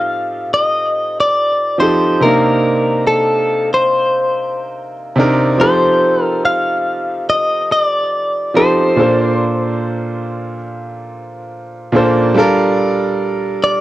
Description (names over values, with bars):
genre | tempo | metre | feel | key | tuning
R&B | 71 BPM | 4/4 | swing 58% on 16ths | C dorian | A4 = 439 Hz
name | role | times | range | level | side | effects
direct-recorded clean electric guitar | melody | 0.0-13.8 s | A4 to F5 | -14 LUFS | left 1 dB | none
bright grand piano | accompaniment | 0.0-13.8 s | Bb2 to C5 | -16 LUFS | right 1 dB | cassette tape
room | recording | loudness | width
moderate studio reverb, RT60 0.5 s | home recording on cassette | -12 LUFS | side -15 dB against mid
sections
0.0-12.4 A section; 12.4-13.8 B section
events
none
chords
0.0 F7; 2.2 Cm7; 5.6 F7; 9.0 Bbmaj9; 12.4 Gm9